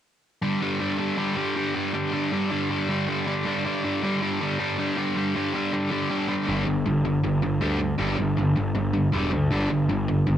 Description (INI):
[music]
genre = punk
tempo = 159 BPM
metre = 4/4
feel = straight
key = unclear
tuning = A4 = 439 Hz
[part]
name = overdriven electric guitar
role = riff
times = 0.4-10.4 s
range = G2 to G3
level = -23 LUFS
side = equal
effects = cassette tape
[part]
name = fuzz picked electric bass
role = bass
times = 6.5-10.4 s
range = E1 to D2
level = -26 LUFS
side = equal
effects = overdrive
[sound]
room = digital ambience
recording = home recording on cassette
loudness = -22 LUFS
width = side -10 dB against mid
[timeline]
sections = 0.4-6.5 A section; 6.5-10.4 B section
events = none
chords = 0.4 G5